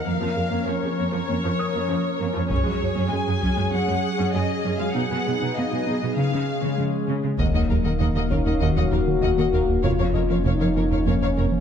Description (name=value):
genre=cinematic, hybrid orchestral and electronic film score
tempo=98 BPM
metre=4/4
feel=straight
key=Eb minor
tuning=A4 = 440 Hz
part: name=warm symphonic violin section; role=melody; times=0.0-11.4 s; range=Db5 to Ab5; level=-30 LUFS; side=left 4 dB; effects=none
part: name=warm studio viola section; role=accompaniment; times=0.0-11.4 s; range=Db3 to Bb4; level=-31 LUFS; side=equal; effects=none
part: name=hollow soft pad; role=sustained chords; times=0.0-11.6 s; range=F3 to F5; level=-30 LUFS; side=equal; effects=chorus
part: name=harp-like synth pluck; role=arpeggios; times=0.0-11.5 s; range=Db3 to Bb4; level=-30 LUFS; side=left 3 dB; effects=chorus, digital delay
part: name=felt-muted upright piano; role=texture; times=0.0-11.6 s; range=Db4 to F6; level=-37 LUFS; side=left 2 dB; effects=digital delay
part: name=warm symphonic cello section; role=bass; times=0.1-11.4 s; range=Eb2 to Db3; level=-27 LUFS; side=right 3 dB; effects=none
part: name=taiko ensemble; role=drums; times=2.5-3.7, 7.4-8.6 s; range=none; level=-29 LUFS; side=equal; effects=none
part: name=warm symphonic violin section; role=second line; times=7.4-11.4 s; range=Bb4 to Eb5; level=-33 LUFS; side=left 4 dB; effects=none
part: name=warm French horn section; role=sustained chords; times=7.4-11.6 s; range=Bb3 to Gb4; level=-25 LUFS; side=left 5 dB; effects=none
part: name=rubbery square bass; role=riff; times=7.4-11.6 s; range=Eb2 to F3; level=-25 LUFS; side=right 2 dB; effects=none
part: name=clear symphonic double bass section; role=bass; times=7.4-11.4 s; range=F1 to Eb2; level=-30 LUFS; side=right 4 dB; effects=none
part: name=punchy sub bass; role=bass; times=7.4-11.6 s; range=Eb1 to F1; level=-27 LUFS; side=equal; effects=none
room=moderate scoring stage reverb, RT60 2.0 s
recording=dark, warm production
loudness=-20 LUFS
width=side -8 dB against mid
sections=0.0-7.4 A section; 7.4-11.6 B section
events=none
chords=0.1 Bbm/F; 2.5 Gbsus2; 5.0 B6; 6.2 Db; 7.4 Ebmadd9; 9.8 Bbm/F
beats=| 0.05 0.66 1.28 1.89 | 2.50 3.11 3.73 4.34 | 4.95 5.56 6.17 6.79 | 7.40 8.01 8.62 9.24 | 9.85 10.46 11.07